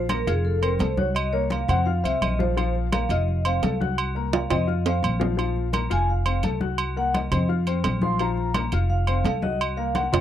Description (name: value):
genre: Afro-Cuban jazz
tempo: 170 BPM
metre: 4/4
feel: straight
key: unclear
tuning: A4 = 441 Hz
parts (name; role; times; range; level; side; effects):
- vibraphone with medium mallets; melody; 0.0-10.1 s; Ab4 to C6; -27 LUFS; right 1 dB; none
- warm baby grand piano; accompaniment; 0.0-10.2 s; F3 to Gb6; -30 LUFS; left 14 dB; none
- upright bass; bass; 0.0-10.2 s; F1 to F2; -25 LUFS; right 1 dB; none
- agogo bells and timbales; percussion; 0.1-10.2 s; none; -29 LUFS; right 6 dB; none
- congas; percussion; 0.1-10.2 s; none; -29 LUFS; left 1 dB; none
room: little or no reverb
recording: dry, close 1970s-style studio recording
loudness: -21 LUFS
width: side -10 dB against mid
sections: 0.0-10.2 A section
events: vibraphone solo 0.0-10.2; drum fill 4.3-5.4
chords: 0.5 F; 1.2 Ebm13/C; 1.9 F5; 2.6 Bb5; 3.3 F; 4.0 Cm7b5; 4.7 F5; 5.4 Bb5; 6.1 F; 6.8 Cm7b5; 7.5 F5; 8.2 Bb5; 8.9 F; 9.6 Cm7b5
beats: 0.10 0.45 0.81 | 1.16 1.51 1.86 2.21 | 2.57 2.92 3.27 3.62 | 3.98 4.33 4.68 5.03 | 5.38 5.73 6.09 6.44 | 6.79 7.14 7.49 7.84 | 8.20 8.55 8.90 9.25 | 9.60 9.95